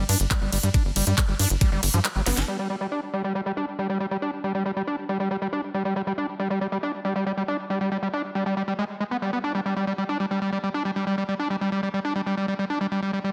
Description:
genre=psychedelic trance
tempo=138 BPM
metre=4/4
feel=straight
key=G major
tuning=A4 = 440 Hz
part: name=screaming distorted acid line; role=riff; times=0.0-13.3 s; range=F3 to D4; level=-28 LUFS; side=equal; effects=distortion, chorus, sidechain pumping, delay
part: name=tight sequencer bass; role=bass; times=0.0-2.4 s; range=G1 to G2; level=-26 LUFS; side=equal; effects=none
part: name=drum and bass drum kit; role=drums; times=0.1-2.5 s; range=handclaps, hi-hat, ride cymbal, snare drum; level=-29 LUFS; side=equal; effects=none
part: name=electronic kick drum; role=drums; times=0.3-1.7 s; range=none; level=-24 LUFS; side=equal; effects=none
room=moderate digital room reverb, RT60 1.0 s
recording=dense, heavily limited modern master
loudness=-26 LUFS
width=mono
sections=0.0-2.5 A section; 2.5-13.3 B section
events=drop 0.0-2.5; break 2.0-2.5; drum fill 2.3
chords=0.0 G5

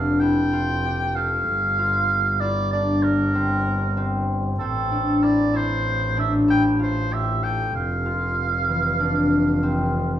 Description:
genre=contemporary instrumental, chamber music in an uneven meter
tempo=96 BPM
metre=5/4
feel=straight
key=F major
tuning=A4 = 439 Hz
part: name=warm oboe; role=melody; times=0.0-10.2 s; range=A4 to G5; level=-24 LUFS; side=right 2 dB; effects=none
part: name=concert harp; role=arpeggios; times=0.0-10.2 s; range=E3 to A4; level=-23 LUFS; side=left 1 dB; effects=none
part: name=clear double bass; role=bass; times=0.0-10.2 s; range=F1 to A1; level=-25 LUFS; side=equal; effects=none
room=moderate recital hall reverb, RT60 1.4 s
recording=none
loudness=-19 LUFS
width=side -11 dB against mid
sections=0.0-10.2 A section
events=none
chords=0.0 Fmaj7; 1.5 C9sus4/G; 4.6 Am7; 7.7 Fmaj7

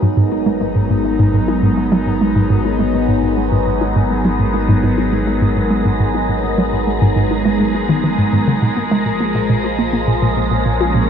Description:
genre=ambient, sequencer-driven space music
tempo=103 BPM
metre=4/4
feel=straight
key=G# dorian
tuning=A4 = 440 Hz
part: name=phased analog pad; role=sustained chords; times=0.0-11.1 s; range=E#3 to G#4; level=-18 LUFS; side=equal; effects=phaser, chorus, shimmer reverb
part: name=hollow square pluck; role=riff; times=0.0-11.0 s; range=G#2 to E#4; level=-17 LUFS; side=equal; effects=chorus, ping-pong delay
part: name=round analog bass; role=bass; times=0.0-11.1 s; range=G#1 to A#1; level=-24 LUFS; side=equal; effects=none
part: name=wind-like tuned noise texture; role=texture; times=0.0-11.1 s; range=A#4 to A#5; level=-25 LUFS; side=left 3 dB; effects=built-in reverb, shimmer reverb
room=moderate plate reverb, RT60 2.5 s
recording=cassette tape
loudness=-13 LUFS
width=side -8 dB against mid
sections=0.0-11.1 A section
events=none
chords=0.0 G#m7; 8.6 A#m7

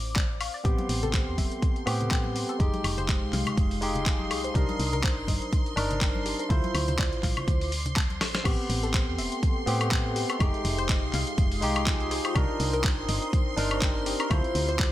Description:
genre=deep house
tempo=123 BPM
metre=4/4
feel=swing 56% on 16ths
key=A minor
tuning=A4 = 441 Hz
part: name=dark analog pad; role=sustained chords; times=0.0-14.9 s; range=Ab3 to Eb6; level=-38 LUFS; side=equal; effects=chorus, sidechain pumping
part: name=woody FM bass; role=bass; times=0.0-14.9 s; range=E1 to A2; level=-31 LUFS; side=equal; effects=tube saturation, sidechain pumping
part: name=warbly dusty pluck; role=arpeggios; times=0.2-14.9 s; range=G4 to A5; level=-38 LUFS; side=left 4 dB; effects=chorus, sidechain pumping, dub echo
part: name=dusty soul sampler-style drum kit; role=drums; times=0.2-14.9 s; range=crash cymbal, handclaps, hi-hat, snare drum, woodblock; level=-32 LUFS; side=left 1 dB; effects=small room reverb
part: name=electronic kick drum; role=drums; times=0.2-14.9 s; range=none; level=-26 LUFS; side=equal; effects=small room reverb
part: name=barky tine electric piano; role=stabs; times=0.6-14.9 s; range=Ab3 to C5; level=-32 LUFS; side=equal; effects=sidechain pumping, dub echo
part: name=string machine, violins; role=texture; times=0.7-14.9 s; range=C6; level=-38 LUFS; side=right 1 dB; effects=ensemble chorus, sidechain pumping
part: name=congas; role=percussion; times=0.8-8.2 s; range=none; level=-38 LUFS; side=left 2 dB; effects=none
part: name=granular cloud pad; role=texture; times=9.8-14.9 s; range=C4 to E6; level=-39 LUFS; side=equal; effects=built-in reverb, sidechain pumping
room=digital ambience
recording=none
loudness=-24 LUFS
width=side -14 dB against mid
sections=0.0-8.5 A section; 8.5-14.9 B section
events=drum fill 8.2; drop 8.5-14.9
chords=0.0 Dm7; 0.6 Am7; 2.6 Fm7; 4.6 Cm7; 6.5 Dm7; 8.5 Am7; 10.4 Fm7; 12.4 Cm7; 14.3 Dm7

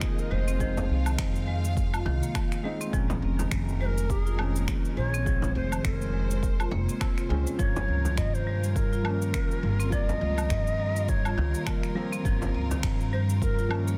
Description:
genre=organic downtempo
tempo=103 BPM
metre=4/4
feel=swing 58% on 16ths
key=unclear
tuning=A4 = 440 Hz
part: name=Native American-style cedar flute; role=melody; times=0.0-14.0 s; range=Ab4 to Eb5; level=-38 LUFS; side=equal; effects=digital delay
part: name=felt-muted upright piano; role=accompaniment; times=0.0-14.0 s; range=F3 to Eb4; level=-40 LUFS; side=equal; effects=sidechain pumping, digital delay
part: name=clear studio string section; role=sustained chords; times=0.0-14.0 s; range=G3 to F5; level=-42 LUFS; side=equal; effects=sidechain pumping
part: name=marimba with hard mallets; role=arpeggios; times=0.0-14.0 s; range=C3 to F4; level=-37 LUFS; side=equal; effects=digital delay
part: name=electronic finger snaps, shaker and woodblock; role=drums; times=0.0-14.0 s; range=none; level=-39 LUFS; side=equal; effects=soft clipping on snare
part: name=electronic kick drum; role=drums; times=0.0-13.6 s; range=none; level=-32 LUFS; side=equal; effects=none
part: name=upright bass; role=bass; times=0.3-14.0 s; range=F1 to G2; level=-30 LUFS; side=equal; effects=sidechain pumping
part: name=frame drum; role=percussion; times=0.8-12.8 s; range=none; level=-38 LUFS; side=equal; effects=none
room=light reverb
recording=dense, heavily limited modern master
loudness=-27 LUFS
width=mono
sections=0.0-14.0 A section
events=none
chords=0.0 Fm7; 2.9 Bbm7; 7.6 Gm7b5

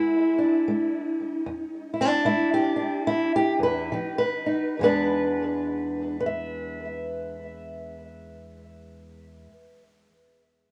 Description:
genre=acoustic country blues, solo or duo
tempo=68-79 BPM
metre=4/4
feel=swing 61% on 8ths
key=E mixolydian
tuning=A4 = 440 Hz
part: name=fingerpicked old ladder-braced acoustic guitar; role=solo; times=0.0-9.8 s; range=E2 to E5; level=-26 LUFS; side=equal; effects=tape echo
room=moderate small room ambience, RT60 0.5 s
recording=worn, warbling old tape, cassette tape, warbly pitch drift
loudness=-25 LUFS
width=mono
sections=0.0-4.8 A section; 4.8-8.3 B section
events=slowing down 0.0-4.8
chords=0.0 E7; 3.9 B; 4.8 E7

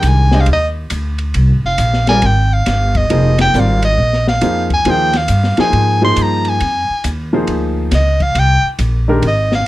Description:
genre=modal jazz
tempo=137 BPM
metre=4/4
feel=swing 65% on 8ths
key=F dorian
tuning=A4 = 439 Hz
part: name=breathy soprano saxophone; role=melody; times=0.0-9.7 s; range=Eb5 to C6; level=-16 LUFS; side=equal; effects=none
part: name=warm grand piano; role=accompaniment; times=0.0-9.2 s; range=Eb3 to Eb5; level=-17 LUFS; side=equal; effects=none
part: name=upright bass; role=bass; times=0.0-9.7 s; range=F1 to Ab2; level=-14 LUFS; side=equal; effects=none
part: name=open jazz drum kit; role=drums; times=0.0-9.6 s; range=hi-hat, kick drum, ride cymbal, snare drum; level=-23 LUFS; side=left 1 dB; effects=none
room=light reverb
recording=dark, warm production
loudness=-11 LUFS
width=side -16 dB against mid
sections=0.0-9.7 A section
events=soprano saxophone solo 0.0-9.7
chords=0.0 Fm9

